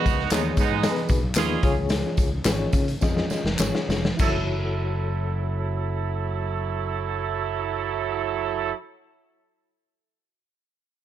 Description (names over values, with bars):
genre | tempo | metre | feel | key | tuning
uptempo 1960s-style soul | 99-116 BPM | 4/4 | straight | F# dorian | A4 = 439 Hz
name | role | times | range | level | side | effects
mellow horn section | second line | 0.0-8.7 s | F#3 to A4 | -27 LUFS | right 11 dB | none
reed electric piano | accompaniment | 0.0-8.8 s | B3 to D#5 | -30 LUFS | left 5 dB | fast tremolo, plate reverb
fingered electric bass | bass | 0.1-8.7 s | E#1 to C#3 | -28 LUFS | left 1 dB | none
raw garage drum kit | drums | 0.1-4.3 s | crash cymbal, hi-hat, kick drum, snare drum | -24 LUFS | equal | none
congas | percussion | 0.1-4.5 s | none | -40 LUFS | left 10 dB | none
tambourine and handclaps | percussion | 0.1-4.5 s | none | -33 LUFS | equal | none
room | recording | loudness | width
little or no reverb | none | -22 LUFS | side -11 dB against mid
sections
0.0-4.2 A section; 4.2-9.1 B section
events
slowing down 0.0-4.2; drum fill 3.0-4.2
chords
0.0 G#m; 1.6 C#; 4.2 F#m7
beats
0.32 0.84 1.37 | 1.90 2.45 3.02 3.60 | 4.19 4.80 5.41 6.02 | 6.63 7.23 7.84 8.45